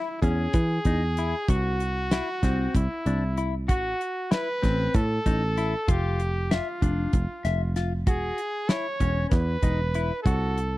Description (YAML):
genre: progressive instrumental, band music in an uneven meter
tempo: 192 BPM (eighths)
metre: 7/8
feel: straight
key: unclear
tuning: A4 = 440 Hz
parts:
  - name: bright trumpet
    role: melody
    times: 0.0-10.8 s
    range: E4 to C#5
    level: -30 LUFS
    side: right 1 dB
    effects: slapback echo
  - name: clean electric guitar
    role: arpeggios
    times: 0.0-10.6 s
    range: C4 to E5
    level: -33 LUFS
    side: left 4 dB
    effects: none
  - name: picked electric bass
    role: bass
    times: 0.2-10.8 s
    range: E1 to E3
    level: -26 LUFS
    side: equal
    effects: none
  - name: damped 70s drum kit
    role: drums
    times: 0.2-10.7 s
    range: hi-hat, kick drum, snare drum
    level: -24 LUFS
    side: equal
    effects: none
room: studio reverb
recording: dry, close 1970s-style studio recording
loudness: -23 LUFS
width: side -18 dB against mid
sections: 0.0-10.8 A section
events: none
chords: 0.0 E; 1.5 C; 3.7 Am; 5.9 Dmadd9/F; 8.1 E; 10.3 C5